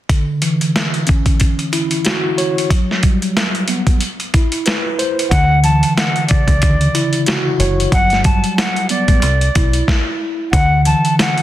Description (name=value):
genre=hip hop, boom-bap hip-hop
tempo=92 BPM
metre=4/4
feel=swing 58% on 16ths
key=D major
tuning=A4 = 438 Hz
part: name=mellow tine electric piano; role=accompaniment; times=0.1-11.4 s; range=C#3 to C#5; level=-18 LUFS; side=equal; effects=medium stereo tremolo, high-pass filter, low-pass filter
part: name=dusty soul sampler-style drum kit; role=drums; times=0.1-11.4 s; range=hi-hat, kick drum, snare drum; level=-16 LUFS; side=equal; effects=none
part: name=reedy silver concert flute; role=melody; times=5.3-11.4 s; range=D5 to A5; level=-18 LUFS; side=equal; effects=high-pass filter, low-pass filter, ping-pong delay
part: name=deep dub fingered electric bass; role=bass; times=5.3-10.9 s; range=F#1 to D2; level=-16 LUFS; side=equal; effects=none
room=light reverb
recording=dense, heavily limited modern master, vinyl crackle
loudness=-13 LUFS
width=side -13 dB against mid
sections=0.1-10.5 A section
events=stop 9.9-10.5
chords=0.1 Dmaj9; 2.7 Gmaj7; 4.0 Cmaj7; 5.3 Dmaj9; 7.9 Gmaj9; 9.2 Cmaj9; 10.5 Dadd9